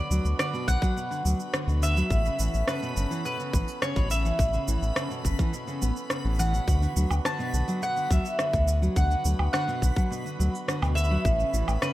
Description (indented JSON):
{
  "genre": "folktronica",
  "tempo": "105 BPM",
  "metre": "4/4",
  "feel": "straight",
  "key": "D major",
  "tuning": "A4 = 441 Hz",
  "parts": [
    { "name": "mandolin", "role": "melody", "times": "0.0-11.9 s", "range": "B4 to A5", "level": "-30 LUFS", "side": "equal", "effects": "tape echo" },
    { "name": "hand-pumped harmonium", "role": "sustained chords", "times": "0.0-11.9 s", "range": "D3 to A4", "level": "-39 LUFS", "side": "right 2 dB", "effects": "none" },
    { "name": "nylon-string guitar", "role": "arpeggios", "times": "0.0-11.9 s", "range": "B2 to B3", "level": "-32 LUFS", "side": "equal", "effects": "tape echo" },
    { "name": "backwards swelling texture", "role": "texture", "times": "0.0-11.9 s", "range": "B5", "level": "-42 LUFS", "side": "equal", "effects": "built-in reverb" },
    { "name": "round analog bass", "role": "bass", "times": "0.1-11.8 s", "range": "G1 to D2", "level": "-25 LUFS", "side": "equal", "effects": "none" },
    { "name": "electronic cabasa, rim click and woodblock", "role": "drums", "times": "0.1-11.9 s", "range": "none", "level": "-32 LUFS", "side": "right 1 dB", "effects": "overdrive" },
    { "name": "electronic kick drum", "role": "drums", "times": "0.7-11.4 s", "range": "none", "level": "-26 LUFS", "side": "equal", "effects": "overdrive" }
  ],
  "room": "light reverb",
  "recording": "none",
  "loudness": "-24 LUFS",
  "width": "side -15 dB against mid",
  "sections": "0.0-11.9 A section",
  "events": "none",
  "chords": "0.0 D6; 2.1 Aadd9; 6.7 D6; 11.2 Aadd9"
}